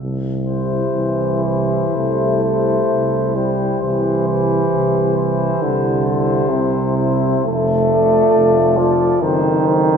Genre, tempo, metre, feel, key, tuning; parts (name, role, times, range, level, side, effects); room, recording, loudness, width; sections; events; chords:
classical, hymn-like piece for brass band; 56-70 BPM; 4/4; rubato; C major; A4 = 442 Hz
warm tuba; bass; 0.0-10.0 s; F1 to C2; -21 LUFS; right 2 dB
mellow flugelhorn; melody; 0.5-10.0 s; C5 to D5; -24 LUFS; left 6 dB
mellow French horn section; second line; 0.5-10.0 s; G4 to A4; -24 LUFS; equal
warm trombone section; accompaniment; 0.5-10.0 s; C4 to F4; -26 LUFS; left 3 dB
clear euphonium; accompaniment; 0.9-10.0 s; C3 to A3; -17 LUFS; equal
wet church reverb, RT60 2.3 s; heard from further back in the room; -14 LUFS; side -6 dB against mid
0.0-10.0 A section
0.0 C; 7.5 Dm/F; 9.2 F#dim7